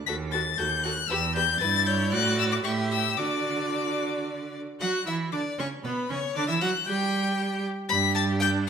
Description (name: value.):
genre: quick classical-period movement for string quartet.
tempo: 116 BPM.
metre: 3/4.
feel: rubato.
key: D major.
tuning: A4 = 440 Hz.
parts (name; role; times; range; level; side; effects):
clear violin; melody; 0.1-8.7 s; B5 to B6; -28 LUFS; left 8 dB; none.
clear violin; second line; 0.1-8.5 s; A4 to B5; -34 LUFS; left 3 dB; none.
clear viola; accompaniment; 0.1-8.7 s; B3 to G4; -32 LUFS; right 3 dB; none.
clear cello; bass; 0.1-8.7 s; D#2 to G3; -29 LUFS; right 4 dB; none.
room: wet recital hall reverb, RT60 1.4 s.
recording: minimal, uncompressed stereo recording.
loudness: -24 LUFS.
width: side -7 dB against mid.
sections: 0.0-4.8 A section; 4.8-8.7 A section.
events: none.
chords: 0.1 D#dim; 1.1 Em; 1.6 Em/G; 2.1 D/A; 2.6 A7(no3); 3.2 D; 6.4 G5/D; 7.9 G5.